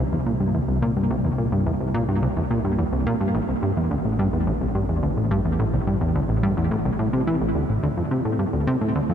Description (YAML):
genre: ambient, sequencer-driven space music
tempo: 107 BPM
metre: 4/4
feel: straight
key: unclear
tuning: A4 = 442 Hz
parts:
  - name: plucky analog bass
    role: riff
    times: 0.0-9.1 s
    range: A1 to E3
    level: -21 LUFS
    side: equal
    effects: tape echo
  - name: analog drone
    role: bass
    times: 0.0-9.1 s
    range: A1 to D2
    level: -30 LUFS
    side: equal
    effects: chorus
room: wet huge ambient reverb, RT60 7.1 s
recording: dark, warm production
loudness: -20 LUFS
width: side -8 dB against mid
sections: 0.0-9.1 A section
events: none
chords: 0.0 C; 3.3 Am; 7.8 D5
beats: 0.54 | 1.10 1.67 2.23 2.79 | 3.35 3.91 4.47 5.03 | 5.59 6.15 6.71 7.27 | 7.83 8.39 8.96